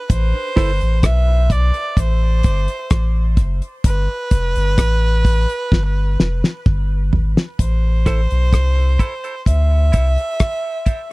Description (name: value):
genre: dub reggae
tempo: 64 BPM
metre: 4/4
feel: straight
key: A minor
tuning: A4 = 440 Hz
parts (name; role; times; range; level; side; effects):
- bright erhu; melody; 0.0-11.1 s; B4 to E5; -24 LUFS; right 1 dB; dub echo
- warm sub bass; bass; 0.1-10.2 s; F1 to D2; -16 LUFS; equal; none
- damped 70s drum kit; drums; 0.1-11.1 s; hi-hat, kick drum, rim click, snare drum, toms; -15 LUFS; equal; none
- semi-hollow electric guitar; accompaniment; 0.6-0.7, 8.1-11.0 s; E4 to C5; -26 LUFS; right 4 dB; high-pass filter, dub echo
room: little or no reverb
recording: dry, close 1970s-style studio recording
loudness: -15 LUFS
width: side -23 dB against mid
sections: 0.0-7.6 A section; 7.6-11.1 B section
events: filter sweep on clean electric guitar 3.8-11.1; drum fill 5.7-7.6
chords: 0.1 Am; 3.8 G; 7.6 Am